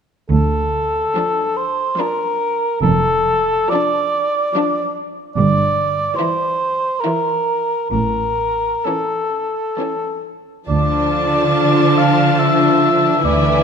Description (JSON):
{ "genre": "classical, slow romantic movement for symphony orchestra", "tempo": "64-75 BPM", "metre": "3/4", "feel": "rubato", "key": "D minor", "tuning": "A4 = 440 Hz", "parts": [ { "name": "dark cor anglais", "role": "second line", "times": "0.3-13.6 s", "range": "A4 to F5", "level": "-18 LUFS", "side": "equal", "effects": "none" }, { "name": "clear studio cello section", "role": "bass", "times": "0.3-13.6 s", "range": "D2 to D3", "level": "-20 LUFS", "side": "right 2 dB", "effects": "none" }, { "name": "rich studio double bass section", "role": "bass", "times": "0.3-13.6 s", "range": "F1 to D2", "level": "-20 LUFS", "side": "right 3 dB", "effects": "none" }, { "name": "warm studio violin section", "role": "melody", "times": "1.2-13.6 s", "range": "G#5 to Bb5", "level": "-28 LUFS", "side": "left 4 dB", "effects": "none" }, { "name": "rich studio violin section", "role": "second line", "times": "1.2-13.6 s", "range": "C#4 to E4", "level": "-23 LUFS", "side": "left 5 dB", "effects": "none" }, { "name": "rich studio viola section", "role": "accompaniment", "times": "1.2-13.6 s", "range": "E3 to F3", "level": "-23 LUFS", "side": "right 1 dB", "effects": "none" } ], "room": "moderate scoring stage reverb, RT60 1.8 s", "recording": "dark, warm production", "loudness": "-15 LUFS", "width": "side -6 dB against mid", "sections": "0.3-13.6 A section", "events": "none", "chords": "0.3 Dm; 2.8 Dm/F; 5.4 Em7b5/G; 7.9 A; 10.7 Dm" }